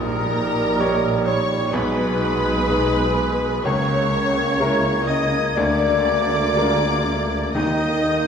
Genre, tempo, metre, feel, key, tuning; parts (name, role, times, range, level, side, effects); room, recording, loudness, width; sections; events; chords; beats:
classical; 62 BPM; 4/4; rubato; A4 = 440 Hz
clear baby grand piano; melody; 0.0-8.3 s; A#1 to C#5; -24 LUFS; equal
warm symphonic violin section; melody; 0.0-8.3 s; A#5 to D#6; -29 LUFS; left 3 dB
dark clarinet; second line; 0.0-8.3 s; A#4 to D#5; -28 LUFS; left 3 dB
mellow hollow silver concert flute; second line; 0.0-8.3 s; D#6 to G#6; -30 LUFS; left 3 dB
rich studio violin section; second line; 0.0-8.3 s; A#4 to D#5; -29 LUFS; left 3 dB
warm cor anglais; second line; 0.0-8.3 s; A#4 to D#5; -28 LUFS; right 2 dB
clear symphonic viola section; accompaniment; 0.0-8.3 s; A#4 to D#5; -28 LUFS; right 1 dB
dark bassoon; accompaniment; 0.0-8.3 s; G3 to A#3; -27 LUFS; right 2 dB
mellow French horn section; sustained chords; 0.0-8.3 s; G3 to D#4; -30 LUFS; left 2 dB
rich symphonic double bass section; bass; 0.0-8.3 s; A#1 to D#2; -28 LUFS; right 2 dB
warm symphonic cello section; bass; 0.0-8.3 s; A#2 to D#3; -27 LUFS; right 2 dB
timpani; percussion; 7.5-8.3 s; D#3; -30 LUFS; equal
wet recital hall reverb, RT60 1.6 s; recorded in a church or concert hall; -17 LUFS; side -7 dB against mid
0.0-8.3 A section
0.0 D#7/A#; 1.7 G#m/B; 3.7 A#m7b5/C#; 5.6 A#7/D; 7.5 D#
0.80 1.74 2.69 | 3.65 4.60 5.57 6.57 | 7.55